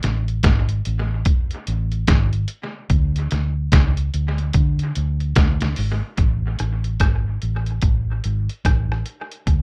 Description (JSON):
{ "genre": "roots reggae", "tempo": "73 BPM", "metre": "4/4", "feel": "swing 61% on 16ths", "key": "A major", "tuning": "A4 = 440 Hz", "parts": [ { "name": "vintage muted fingered electric bass", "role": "bass", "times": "0.0-9.6 s", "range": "G#1 to D3", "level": "-23 LUFS", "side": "equal", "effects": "none" }, { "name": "trip hop sampler-style drum kit", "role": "drums", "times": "0.0-9.6 s", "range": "hi-hat, kick drum, rim click, snare drum", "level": "-22 LUFS", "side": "equal", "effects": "dub echo" } ], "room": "little or no reverb", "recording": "rough home demo mix", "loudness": "-21 LUFS", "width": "mono", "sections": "0.0-6.2 A section; 6.2-9.6 B section", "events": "none", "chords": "none" }